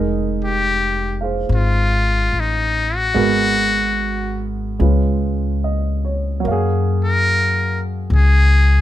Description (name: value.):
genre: jazz ballad.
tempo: 73 BPM.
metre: 4/4.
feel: swing 67% on 8ths.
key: F minor.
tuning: A4 = 440 Hz.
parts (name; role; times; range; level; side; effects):
warm grand piano; accompaniment; 0.0-8.8 s; Gb3 to F5; -22 LUFS; right 6 dB; none.
upright bass; bass; 0.0-8.8 s; F1 to Gb2; -18 LUFS; left 1 dB; none.
trumpet with metal mute; melody; 0.4-8.8 s; Eb4 to Bb4; -18 LUFS; left 2 dB; none.
room: little or no reverb.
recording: close, detailed microphones.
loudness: -15 LUFS.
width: side -13 dB against mid.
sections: 0.0-8.8 A section.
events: none.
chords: 0.0 Fm11; 3.1 Abm9; 4.8 Db7; 6.5 Gbmaj9.